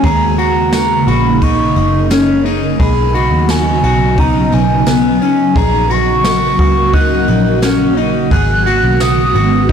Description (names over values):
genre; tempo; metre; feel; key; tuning
dream pop; 87 BPM; 4/4; straight; unclear; A4 = 441 Hz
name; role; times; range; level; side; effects
hollow clarinet-like synth lead; melody; 0.0-9.7 s; G#5 to F#6; -17 LUFS; right 2 dB; chorus, ping-pong delay
shimmering ambient pad; sustained chords; 0.0-9.7 s; C#3 to F#4; -16 LUFS; right 1 dB; chorus, built-in reverb, phaser
electric guitar at the edge of break-up; arpeggios; 0.0-9.7 s; B3 to G#4; -16 LUFS; left 3 dB; wide subtle chorus, ping-pong delay
vintage muted picked electric bass; bass; 0.0-9.7 s; F#1 to D#2; -16 LUFS; equal; transformer saturation
jazz brush drum kit; drums; 0.0-9.7 s; kick drum, ride cymbal, snare drum, tambourine; -19 LUFS; equal; soft clipping on snare
room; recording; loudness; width
light reverb, small room ambience; blown-out, overdriven recording, overdrive; -10 LUFS; side -7 dB against mid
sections
0.0-9.7 A section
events
none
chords
0.0 D#7sus4; 2.8 Badd9; 5.6 F#/A#; 8.3 G#m7